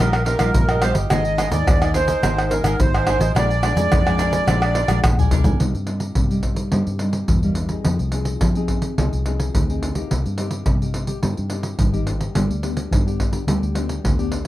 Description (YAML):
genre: samba and choro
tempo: 107 BPM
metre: 4/4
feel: straight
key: C minor from 5.6 s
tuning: A4 = 440 Hz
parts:
  - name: accordion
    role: melody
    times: 0.0-5.0 s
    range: Bb4 to Eb5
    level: -22 LUFS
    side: right 2 dB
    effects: light tremolo tuning
  - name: cavaquinho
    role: accompaniment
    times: 0.0-5.6 s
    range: D4 to Ab5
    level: -28 LUFS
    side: right 5 dB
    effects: none
  - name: nylon-string guitar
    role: accompaniment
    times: 0.0-14.5 s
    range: F2 to Ab4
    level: -26 LUFS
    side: left 2 dB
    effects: none
  - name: vintage muted fingered electric bass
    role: bass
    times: 0.0-14.5 s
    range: G1 to F3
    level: -22 LUFS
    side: equal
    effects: none
  - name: egg shaker, pandeiro, tamborim and surdo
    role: percussion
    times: 0.1-14.5 s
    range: none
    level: -21 LUFS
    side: equal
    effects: none
room: little or no reverb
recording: close, detailed microphones, faint mains hum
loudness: -17 LUFS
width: side -15 dB against mid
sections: 0.0-5.6 A section; 5.6-14.5 B section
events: drum fill 5.0-5.6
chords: 0.0 Ebadd9/Bb; 1.1 Absus2; 3.4 Bb7; 5.6 Cm7; 7.9 Fm7; 10.1 Cm7; 12.4 G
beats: 0.55 | 1.11 1.68 2.24 2.80 | 3.36 3.92 4.48 5.04 | 5.61 6.17 6.73 7.29 | 7.86 8.42 8.98 9.54 | 10.11 10.67 11.23 11.80 | 12.36 12.92 13.48 14.05